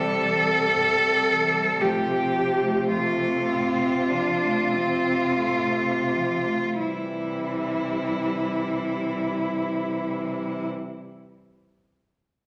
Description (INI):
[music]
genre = classical, lyrical piece for cello ensemble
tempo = 40-56 BPM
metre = 4/4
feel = rubato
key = C major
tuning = A4 = 440 Hz
[part]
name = rich cello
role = melody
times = 0.0-10.7 s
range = E4 to A4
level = -26 LUFS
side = equal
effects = none
[part]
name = rich cello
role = second line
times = 0.0-10.7 s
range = G2 to A3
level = -35 LUFS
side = equal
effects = none
[part]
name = rich cello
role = accompaniment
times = 0.0-10.7 s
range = E3 to D4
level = -34 LUFS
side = equal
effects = none
[part]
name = rich cello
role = bass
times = 0.0-10.7 s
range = C3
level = -34 LUFS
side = equal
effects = none
[sound]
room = wet recital hall reverb, RT60 1.5 s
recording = none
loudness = -24 LUFS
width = mono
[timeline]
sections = 0.0-6.8 A section; 6.8-12.1 B section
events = slowing down 0.0-6.8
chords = 0.0 C; 1.8 F/A; 6.8 C